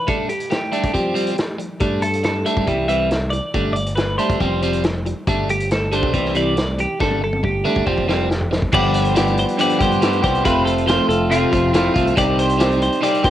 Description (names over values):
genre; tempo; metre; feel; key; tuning
indie rock; 139 BPM; 4/4; straight; G mixolydian; A4 = 440 Hz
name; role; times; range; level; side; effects
twelve-string electric guitar; melody; 0.0-13.3 s; F4 to E5; -22 LUFS; right 1 dB; none
biting overdriven guitar; riff; 0.0-13.3 s; F2 to G4; -19 LUFS; equal; cassette tape
vintage drum kit; drums; 0.1-13.3 s; crash cymbal, hi-hat, kick drum, snare drum, toms; -23 LUFS; equal; cassette tape
growling fingered electric bass; bass; 1.8-13.3 s; F1 to C3; -23 LUFS; equal; overdrive
room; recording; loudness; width
light reverb, studio reverb; home recording on cassette; -16 LUFS; side -12 dB against mid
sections
0.0-8.7 A section; 8.7-13.3 B section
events
drum fill 7.0-8.7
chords
0.1 Gsus2; 0.9 Fsus2; 1.8 Gsus2; 2.7 C; 3.5 Gsus2; 4.4 Fsus2; 5.3 Gsus2; 6.1 Cadd9; 7.0 Gsus2; 7.9 Fsus2; 8.7 G7sus4; 10.4 F; 12.2 Cm